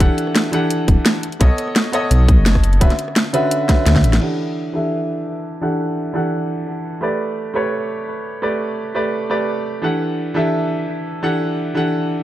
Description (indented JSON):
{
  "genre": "liquid drum and bass",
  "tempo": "171 BPM",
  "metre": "4/4",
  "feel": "straight",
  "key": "E dorian",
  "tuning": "A4 = 441 Hz",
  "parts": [
    { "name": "bright concert grand piano", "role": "accompaniment", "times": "0.0-12.2 s", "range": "D3 to F#5", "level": "-19 LUFS", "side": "right 1 dB", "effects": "low-pass filter, analog delay" },
    { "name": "dark detuned saw bass", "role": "bass", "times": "0.0-4.2 s", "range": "D1 to D2", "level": "-14 LUFS", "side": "equal", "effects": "none" },
    { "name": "drum and bass drum kit", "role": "drums", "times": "0.0-4.3 s", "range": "crash cymbal, hi-hat, rim click, snare drum", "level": "-19 LUFS", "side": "equal", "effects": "overdrive, low-pass filter on hats, low-pass filter on snare, low-pass filter on cymbals" },
    { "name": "electronic kick drum", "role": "drums", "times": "0.0-4.0 s", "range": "none", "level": "-14 LUFS", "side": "equal", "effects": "overdrive" }
  ],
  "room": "light reverb, digital ambience",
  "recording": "echo-heavy mix",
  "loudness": "-16 LUFS",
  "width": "side -14 dB against mid",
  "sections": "0.0-4.2 A section; 4.2-12.2 B section",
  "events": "drum fill 3.7-4.2; filter sweep on grand piano 4.2-12.2",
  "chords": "0.0 Em11; 1.2 B9; 2.8 Dmaj13; 4.2 Em11; 7.0 A9sus4; 9.8 Em11"
}